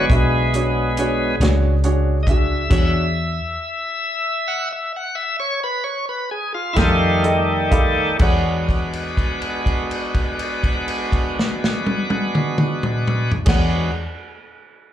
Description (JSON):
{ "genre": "slow blues", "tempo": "41-46 BPM (dotted quarters)", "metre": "12/8", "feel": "straight", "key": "E mixolydian", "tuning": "A4 = 440 Hz", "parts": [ { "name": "overdriven tonewheel organ", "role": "sustained chords", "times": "0.0-13.9 s", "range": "Eb3 to F#5", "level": "-22 LUFS", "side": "left 1 dB", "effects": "slow rotary speaker" }, { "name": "vintage muted fingered electric bass", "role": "bass", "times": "0.0-13.9 s", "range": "B1 to F2", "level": "-20 LUFS", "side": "equal", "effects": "none" }, { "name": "warm grand piano", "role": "accompaniment", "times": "0.1-13.9 s", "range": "D4 to B5", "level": "-24 LUFS", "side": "right 2 dB", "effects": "slapback echo" }, { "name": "warm soul drum kit", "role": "drums", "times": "0.1-13.7 s", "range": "crash cymbal, hi-hat, kick drum, snare drum, toms", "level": "-20 LUFS", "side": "equal", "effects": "none" } ], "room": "light reverb, studio reverb", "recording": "live gig heard through the venue's PA, club reverb", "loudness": "-17 LUFS", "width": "side -11 dB against mid", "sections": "0.0-8.2 A section; 8.2-14.1 B section", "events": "tonewheel organ solo 0.0-8.2; slowing down 1.0-8.2; stop 2.7-6.8; grand piano fill 6.8-8.2; held note 8.2-13.5", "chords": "0.0 E13; 6.8 F9; 8.2 E13", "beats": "0.09 1.39 | 2.70 4.03 5.38 6.77 | 8.21 9.67 11.13 12.60" }